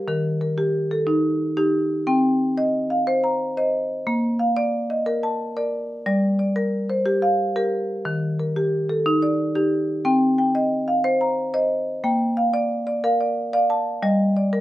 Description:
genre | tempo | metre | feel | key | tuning
southern african traditional | 120 BPM (dotted quarters) | 12/8 | straight | Bb major | A4 = 440 Hz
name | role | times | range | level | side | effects
marimba with medium mallets | solo | 0.0-14.6 s | Eb3 to Bb5 | -19 LUFS | equal | none
room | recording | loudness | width
moderate studio reverb, RT60 0.5 s | none | -19 LUFS | side -15 dB against mid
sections
0.0-12.0 A section; 12.0-14.6 B section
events
none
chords
0.1 Eb; 2.1 Cm; 4.1 Bb; 6.1 Gm; 8.1 Eb; 10.0 Cm; 12.0 Bb; 14.0 Gm

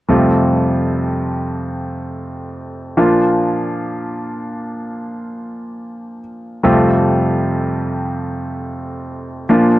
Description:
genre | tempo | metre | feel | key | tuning
pop | free time | none | none | F major | A4 = 439 Hz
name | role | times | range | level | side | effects
bright concert grand piano | accompaniment | 0.1-9.8 s | F2 to F4 | -16 LUFS | equal | none
room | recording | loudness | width
moderate booth ambience, RT60 0.2 s | dry, close 1970s-style studio recording | -15 LUFS | side -16 dB against mid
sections
0.1-9.8 A section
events
none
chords
0.1 Fadd9; 3.0 Bb; 6.6 Fadd9

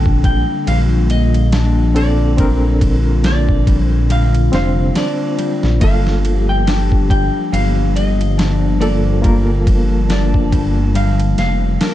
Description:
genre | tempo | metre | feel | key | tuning
trip hop | 70 BPM | 4/4 | swing 57% on 16ths | G minor | A4 = 438 Hz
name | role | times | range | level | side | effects
clean electric guitar | melody | 0.0-11.9 s | Bb4 to G5 | -24 LUFS | right 1 dB | tape echo
bright reed electric piano | accompaniment | 0.0-11.9 s | D3 to C5 | -23 LUFS | equal | tremolo, tape echo
warbly tape-like pad | sustained chords | 0.0-11.9 s | D3 to A5 | -23 LUFS | equal | chorus, built-in reverb, vintage 12-bit sampler grit
concert harp | arpeggios | 0.0-11.9 s | G3 to D4 | -23 LUFS | left 6 dB | tape echo
dark detuned saw bass | bass | 0.0-11.8 s | F1 to Bb1 | -15 LUFS | equal | none
boom bap sampler-style drum kit | drums | 0.1-11.9 s | kick drum, ride cymbal, snare drum | -19 LUFS | equal | overdrive, vintage 12-bit sampler grit, small room ambience
room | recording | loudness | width
little or no reverb | dark, warm production, vinyl crackle, nothing above 10.6 kHz | -12 LUFS | side -13 dB against mid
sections
0.0-11.9 A section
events
none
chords
0.0 Gm9

